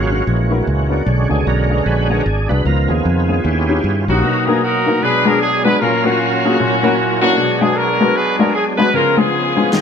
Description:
uptempo gospel; 152 BPM; 4/4; swing 61% on 8ths; A4 = 441 Hz
warm baby grand piano; accompaniment; 0.0-9.8 s; A#2 to B4; -18 LUFS; left 4 dB
overdriven tonewheel organ; sustained chords; 0.0-9.8 s; A#2 to G5; -20 LUFS; right 3 dB; slow rotary speaker, chorus vibrato
fingered electric bass; bass; 0.0-4.2 s; G#1 to G2; -16 LUFS; equal
warm horn section; melody; 4.1-9.8 s; A#3 to B4; -15 LUFS; left 1 dB
electronic snare drum; drums; 9.7-9.8 s; -15 LUFS; left 1 dB
light reverb; -13 LUFS; side -7 dB against mid
0.0-4.2 A section; 4.2-9.8 B section
tonewheel organ solo 0.0-4.2
0.3 F#7/A#; 1.1 Bm6; 2.7 C#7; 3.4 D#7b9; 4.2 Bmaj7; 5.0 Bm6; 5.8 F#maj7/A#; 6.6 F#7/A#; 7.4 Bm6; 8.9 C#7

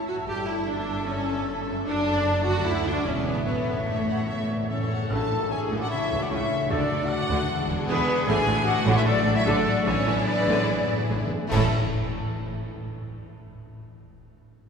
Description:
classical, dramatic, fast romantic movement for symphony orchestra; 150 BPM; 4/4; straight; A major; A4 = 442 Hz
warm symphonic violin section; melody; 0.0-11.8 s; A4 to A5; -33 LUFS; left 3 dB
clear symphonic violin section; second line; 0.0-11.7 s; C#4 to E5; -37 LUFS; left 2 dB
mellow hollow silver concert flute; second line; 0.0-11.7 s; B4 to A5; -32 LUFS; left 1 dB
warm clarinet; second line; 0.0-4.9 s; G#4 to C#5; -41 LUFS; left 4 dB
warm oboe; second line; 0.0-11.7 s; G#4 to E5; -34 LUFS; right 2 dB
clear symphonic viola section; accompaniment; 0.0-11.8 s; C#3 to G4; -30 LUFS; equal
clear French horn section; sustained chords; 0.0-11.7 s; A3 to A4; -30 LUFS; left 2 dB
concert harp; arpeggios; 0.0-11.7 s; F#2 to A5; -34 LUFS; left 3 dB
rich symphonic cello section; bass; 0.0-11.7 s; C#2 to A2; -32 LUFS; right 2 dB
rich symphonic double bass section; bass; 0.0-11.7 s; E1 to D2; -32 LUFS; right 2 dB
cymbal swell, tam-tam, clash cymbals and concert bass drum; percussion; 1.9-6.7, 11.5-12.3 s; -39 LUFS; equal
timpani; percussion; 3.5-5.1, 8.3-11.7 s; A2; -35 LUFS; equal
wet cathedral reverb, RT60 4.2 s; recorded in a church or concert hall; -22 LUFS; side -6 dB against mid
0.0-5.1 A section; 5.1-11.5 B section; 11.5-13.2 C section
timpani fill 3.5-5.1, 9.9-11.5; band accent 5.1-5.5, 11.5-11.9
0.3 A7/G; 1.9 D/F#; 2.6 D; 3.0 E7; 3.5 A; 5.9 A/C#; 6.7 D; 7.5 E9; 8.3 D/A; 9.9 E7/A; 11.5 A

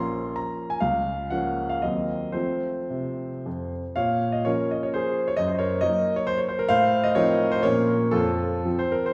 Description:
classical, romantic triple-time dance for piano with dotted rhythms; 104-143 BPM; 3/4; rubato; Bb minor; A4 = 440 Hz
warm baby grand piano; solo; 0.0-9.1 s; Bb1 to C6; -25 LUFS; equal
wet recital hall reverb, RT60 1.6 s; heard from further back in the room; -25 LUFS; mono
0.0-4.0 A section; 4.0-9.1 B section
0.0 Bbm; 0.8 Bbm/Db; 1.8 Cm7b5/Eb; 2.3 F; 4.0 Bbm; 5.4 Ebm/Gb; 6.7 F7/A; 7.6 Bbm; 8.1 F

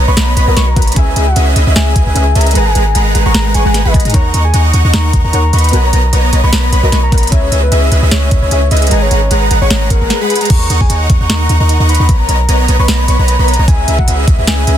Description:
future bass; 151 BPM; 4/4; swing 55% on 16ths, half-time; G# minor; A4 = 439 Hz
soft round pluck; accompaniment; 0.0-10.0 s; G#3 to G#5; -23 LUFS; left 2 dB; ensemble chorus, sidechain pumping, digital delay
airy dreamy lead; arpeggios; 0.0-14.8 s; E5 to C#6; -22 LUFS; equal; chorus, sidechain pumping, digital delay
supersaw chords; riff; 0.0-14.8 s; G#3 to C#6; -17 LUFS; right 1 dB; wide subtle chorus, sidechain pumping
warm 808-style bass; bass; 0.0-14.8 s; G#1 to G#2; -11 LUFS; equal; tube saturation, sidechain pumping
soft octave-layered synth lead; melody; 0.1-14.7 s; G#4 to B5; -19 LUFS; left 2 dB; chorus, sidechain pumping, digital delay
trap drum kit; drums; 0.2-14.8 s; crash cymbal, hi-hat, snare drum; -17 LUFS; right 1 dB; overdrive
electronic kick drum; drums; 0.8-14.4 s; -11 LUFS; equal; overdrive
little or no reverb; dense, heavily limited modern master; -8 LUFS; side -10 dB against mid
0.0-10.5 A section; 10.5-14.8 A section
drop 0.0-10.5, 10.5-14.8
0.0 Bmaj7; 1.0 C#m7; 2.6 G#m7; 4.1 D#m7; 5.7 Bmaj7; 7.3 C#m7; 8.9 G#m7; 10.5 D#m7; 12.1 Bmaj7; 13.7 C#m7

